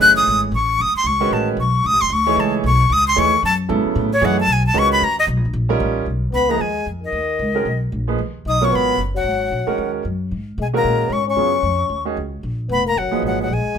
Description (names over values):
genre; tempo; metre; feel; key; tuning
modal jazz; 226 BPM; 4/4; swing 60% on 8ths; F# dorian, G# dorian from 6.1 s; A4 = 442 Hz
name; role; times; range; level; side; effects
breathy bright jazz flute; melody; 0.0-13.8 s; C#5 to F#6; -17 LUFS; left 2 dB; none
clear grand piano; accompaniment; 0.0-13.5 s; A#2 to C#5; -22 LUFS; right 6 dB; none
upright bass; bass; 0.0-13.8 s; E#1 to B2; -22 LUFS; equal; none
trombone with cup mute; second line; 6.3-13.8 s; D#3 to D#4; -22 LUFS; left 6 dB; none
room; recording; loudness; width
light reverb; minimal, uncompressed stereo recording; -16 LUFS; side -7 dB against mid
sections
0.0-6.1 A section; 6.1-13.8 B section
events
flute solo 0.0-6.1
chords
0.0 F#m69; 5.0 D#7; 6.1 G#m9; 10.3 F#add9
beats
0.26 0.52 | 0.79 1.05 1.31 1.58 | 1.84 2.11 2.37 2.63 | 2.90 3.16 3.43 3.69 | 3.95 4.22 4.48 4.75 | 5.01 5.28 5.54 5.80 | 6.07 6.33 6.60 6.86 | 7.13 7.39 7.66 7.92 | 8.19 8.45 8.72 8.98 | 9.25 9.51 9.78 10.04 | 10.31 10.57 10.84 11.10 | 11.37 11.63 11.90 12.16 | 12.43 12.70 12.96 13.22 | 13.49 13.76